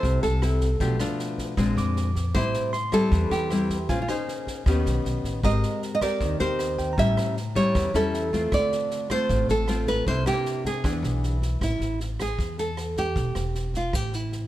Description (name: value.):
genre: bossa nova.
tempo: 155 BPM.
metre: 4/4.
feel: straight.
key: unclear.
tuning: A4 = 436 Hz.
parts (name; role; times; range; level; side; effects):
nylon-string guitar; melody; 0.0-14.5 s; Eb4 to E5; -27 LUFS; right 2 dB; none.
barky tine electric piano; accompaniment; 0.0-8.7 s; E5 to E6; -37 LUFS; right 2 dB; none.
nylon-string guitar; accompaniment; 0.0-11.6 s; A2 to C5; -27 LUFS; left 2 dB; none.
upright bass; bass; 0.0-14.5 s; E1 to F2; -26 LUFS; equal; none.
swinging big-band drum kit; drums; 0.0-14.4 s; kick drum, rim click, snare drum; -32 LUFS; equal; none.
room: little or no reverb.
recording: close, detailed microphones.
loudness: -22 LUFS.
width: side -14 dB against mid.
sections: 0.0-11.6 A section; 11.6-14.5 B section.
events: none.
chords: 0.0 Fmaj7 (rootless); 0.8 Bm7b5; 1.6 Bb9; 2.3 Am7; 3.9 Bbm9; 4.7 Ebaug7; 5.4 Abmaj9; 7.0 A7; 8.5 Dm7; 10.1 C9; 10.8 E7; 11.6 A5; 13.2 Em; 13.9 A5.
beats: 0.03 0.42 | 0.80 1.19 1.57 1.96 | 2.35 2.73 3.12 3.50 | 3.89 4.28 4.66 5.05 | 5.43 5.82 6.21 6.59 | 6.98 7.37 7.75 8.14 | 8.52 8.91 9.30 9.68 | 10.07 10.46 10.84 11.23 | 11.61 12.00 12.39 12.77 | 13.16 13.55 13.93 14.32.